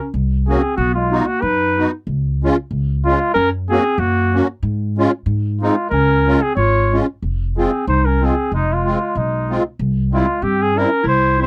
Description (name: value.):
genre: alpine folk, alpine dance band.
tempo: 94 BPM.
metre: 2/4.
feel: swing 55% on 8ths.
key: Db major, F minor from 7.2 s.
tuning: A4 = 440 Hz.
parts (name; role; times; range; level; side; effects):
clear flugelhorn; melody; 0.0-11.5 s; Eb4 to Db5; -21 LUFS; equal; none.
warm clarinet; second line; 0.0-11.5 s; Ab3 to F4; -25 LUFS; equal; none.
upright bass; bass; 0.1-11.5 s; F1 to Ab2; -21 LUFS; equal; none.
musette accordion; accompaniment; 0.5-11.5 s; G3 to Gb4; -20 LUFS; equal; none.
room: light reverb.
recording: dry, close 1970s-style studio recording.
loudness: -18 LUFS.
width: mono.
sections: 0.0-7.2 A section; 7.2-11.5 B section.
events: none.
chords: 0.0 Gb; 0.8 Cb; 2.1 Db; 3.4 Gb; 4.6 Db/Ab; 5.3 Ab; 5.9 Db; 7.2 Fm; 9.8 C.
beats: 0.14 | 0.77 1.42 | 2.07 2.71 | 3.35 3.99 | 4.63 5.27 | 5.91 6.57 | 7.22 7.87 | 8.51 9.15 | 9.79 10.42 | 11.06.